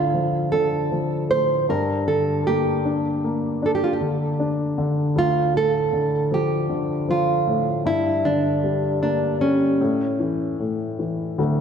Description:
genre	pop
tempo	78 BPM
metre	4/4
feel	straight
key	D minor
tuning	A4 = 440 Hz
part	nylon-string guitar	melody	0.0-10.6 s	C#4 to C5	-21 LUFS	right 3 dB	none
part	dark upright piano	accompaniment	0.0-11.6 s	D1 to D4	-23 LUFS	left 2 dB	none
room	moderate scoring stage reverb, RT60 1.8 s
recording	nothing above 11.0 kHz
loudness	-19 LUFS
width	side -7 dB against mid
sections	0.0-11.4 A section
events	none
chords	0.0 Dm; 1.7 Gm; 5.2 Dm; 7.9 Gm; 9.8 A

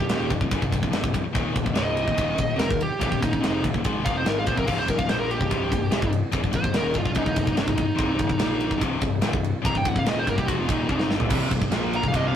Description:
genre	heavy metal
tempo	145 BPM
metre	4/4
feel	straight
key	C minor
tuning	A4 = 441 Hz
part	high-gain lead guitar	melody	0.0-12.4 s	Eb4 to Bb5	-26 LUFS	right 1 dB	distortion
part	high-gain distorted guitar	riff	0.0-12.4 s	C2 to Bb3	-27 LUFS	left 4 dB	distortion
part	fuzz picked electric bass	bass	0.0-12.3 s	C1 to Bb1	-30 LUFS	equal	overdrive
part	tight metal drum kit	drums	0.1-12.2 s	crash cymbal, kick drum, ride cymbal, snare drum, toms	-26 LUFS	right 1 dB	none
part	high-gain distorted guitar	riff	11.3-12.3 s	C2 to Bb3	-30 LUFS	right 5 dB	distortion
part	overdriven electric guitar	riff	11.3-12.4 s	C2 to Bb3	-30 LUFS	right 1 dB	none
room	moderate small room reverb, RT60 0.5 s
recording	rough rehearsal-room recording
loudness	-21 LUFS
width	side -9 dB against mid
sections	0.0-12.4 A section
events	lead electric guitar solo 0.0-12.4; drum fill 10.9-11.3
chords	0.0 Cm; 1.4 Eb5; 4.7 Cm

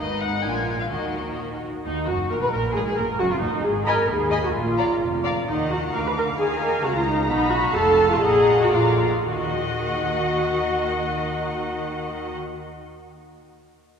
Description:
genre	quick classical-period movement for string orchestra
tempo	105-135 BPM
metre	2/4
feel	straight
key	Eb minor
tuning	A4 = 436 Hz
part	muted chamber violin section	melody	0.0-12.3 s	Eb4 to D6	-30 LUFS	left 3 dB	none
part	muted chamber violin section	second line	0.0-12.3 s	D4 to Bb5	-29 LUFS	left 3 dB	none
part	muted symphonic viola section	accompaniment	0.0-12.3 s	Eb4 to Cb5	-22 LUFS	equal	none
part	muted chamber double bass section	bass	0.0-12.3 s	F1 to Eb2	-31 LUFS	right 2 dB	none
part	muted studio cello section	bass	0.0-12.3 s	Eb2 to Eb3	-30 LUFS	right 2 dB	none
room	wet church reverb, RT60 3.3 s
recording	recorded in a church or concert hall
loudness	-20 LUFS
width	side -7 dB against mid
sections	0.0-1.9 A section; 1.9-9.3 A section; 9.3-11.6 B section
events	slowing down 6.8-9.3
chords	0.0 Abm; 0.5 Bb7; 0.9 Ebm; 2.3 N.C.; 2.8 Ebm; 3.6 Abm; 4.6 Bb; 5.5 Ebm; 5.9 Bb/D; 6.4 Eb5; 7.3 B; 7.7 F; 8.2 Ebm/Bb; 8.7 Bb; 9.3 Ebm

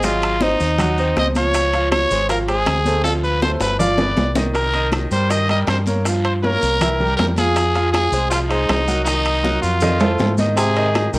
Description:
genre	latin, salsa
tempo	159 BPM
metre	4/4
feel	straight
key	F minor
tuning	A4 = 440 Hz
part	growling trumpet	melody	0.0-11.1 s	Eb4 to Eb5	-20 LUFS	equal	cassette tape
part	bright grand piano	accompaniment	0.0-11.2 s	Eb3 to G5	-22 LUFS	right 1 dB	cassette tape
part	deep dub fingered electric bass	bass	0.0-11.2 s	G1 to Ab2	-21 LUFS	equal	none
part	bongos	percussion	0.0-11.2 s	none	-27 LUFS	left 2 dB	none
part	congas	percussion	0.0-11.1 s	none	-27 LUFS	left 1 dB	none
part	guiro	percussion	0.0-11.2 s	none	-35 LUFS	left 2 dB	none
part	maracas	percussion	0.0-11.2 s	none	-34 LUFS	left 1 dB	none
part	timbales	percussion	0.0-11.1 s	none	-24 LUFS	right 2 dB	none
part	breathy baritone saxophone	second line	10.6-11.2 s	C3 to Eb3	-22 LUFS	right 1 dB	cassette tape
room	light reverb, studio reverb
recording	home recording on cassette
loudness	-15 LUFS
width	side -21 dB against mid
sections	0.0-10.6 A section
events	drum fill 3.0-4.6, 9.8-10.6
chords	0.0 Ab7; 1.5 Dbmaj7; 3.0 Dm7; 3.8 G7; 4.6 Cm7; 6.1 Gm7b5; 6.8 C7; 7.6 Fm7; 9.1 Cm7b5; 9.8 F7; 10.6 Ab

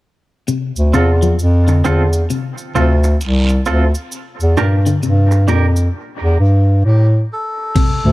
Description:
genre	dub reggae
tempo	66 BPM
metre	4/4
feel	swing 63% on 16ths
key	D minor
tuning	A4 = 440 Hz
part	clean electric guitar	arpeggios	0.5-8.0 s	Bb2 to F3	-21 LUFS	left 4 dB	spring reverb, dub echo
part	cabasa and guiro	percussion	0.5-5.9 s	none	-29 LUFS	right 3 dB	none
part	warm bass clarinet	bass	0.8-8.1 s	C2 to A2	-12 LUFS	equal	none
part	semi-hollow electric guitar	accompaniment	0.9-5.7 s	C4 to Bb4	-22 LUFS	right 3 dB	tremolo, dub echo
part	melodica	melody	6.9-8.1 s	G4 to A4	-22 LUFS	left 1 dB	none
part	breakbeat sampler-style drum kit	drums	7.8-8.0 s	crash cymbal, hi-hat, kick drum	-15 LUFS	equal	none
part	tonewheel organ	accompaniment	8.0-8.1 s	D2 to A2	-10 LUFS	left 1 dB	chorus vibrato, slow rotary speaker
room	studio ambience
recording	dark, warm production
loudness	-12 LUFS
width	side -18 dB against mid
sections	0.5-7.8 A section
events	part muted 0.5-7.8, 7.8-8.1; drums muted 5.9-7.8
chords	0.5 Dm7; 4.1 Em7b5 (rootless)

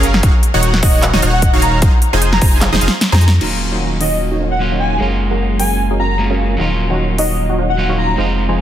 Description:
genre	future bass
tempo	151 BPM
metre	4/4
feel	swing 55% on 16ths, half-time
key	Eb dorian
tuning	A4 = 439 Hz
part	supersaw stab	riff	0.0-8.6 s	Eb3 to Ab5	-19 LUFS	right 1 dB	sidechain pumping, low-pass filter
part	saturated sub bass	bass	0.0-8.6 s	Eb1 to F2	-17 LUFS	equal	sidechain pumping
part	big-room dance drum kit	drums	0.0-7.3 s	crash cymbal, handclaps, hi-hat, snare drum	-19 LUFS	equal	overdrive
part	electronic kick drum	drums	0.2-2.5 s	none	-12 LUFS	equal	overdrive
part	airy dreamy lead	melody	0.8-8.1 s	Eb5 to Bb5	-22 LUFS	left 1 dB	chorus, sidechain pumping, ping-pong delay
part	electric guitar at the edge of break-up	accompaniment	3.4-8.6 s	Gb3 to F4	-20 LUFS	right 2 dB	sidechain pumping, ping-pong delay
room	digital ambience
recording	dense, heavily limited modern master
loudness	-12 LUFS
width	side -11 dB against mid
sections	0.0-3.4 A section; 3.4-8.6 B section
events	drop 0.0-3.4; drum fill 2.6-3.4; kick drops out 3.0-3.4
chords	0.2 Ebm7; 1.8 Fm7; 3.4 Ebm7; 5.0 Gbmaj7; 6.6 Ebm7

